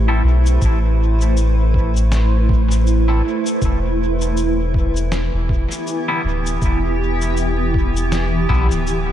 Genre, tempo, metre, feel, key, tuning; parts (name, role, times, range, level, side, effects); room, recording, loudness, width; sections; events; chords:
ambient dub; 80 BPM; 4/4; swing 59% on 16ths; A minor; A4 = 440 Hz
granular cloud pad; sustained chords; 0.0-9.1 s; E3 to C5; -21 LUFS; right 1 dB; built-in reverb, lush chorus
soft dub sub bass; bass; 0.0-9.1 s; D1 to B1; -17 LUFS; equal; tube saturation
twangy electric guitar; stabs; 0.1-8.7 s; D3 to A4; -29 LUFS; left 2 dB; phaser, dub echo
electronic cabasa and snare drum; drums; 0.5-9.0 s; -31 LUFS; left 2 dB; dub echo
electronic kick drum; drums; 0.6-8.7 s; -20 LUFS; equal
light reverb; -15 LUFS; side -11 dB against mid
0.0-9.1 A section
0.0 Am; 3.6 Em7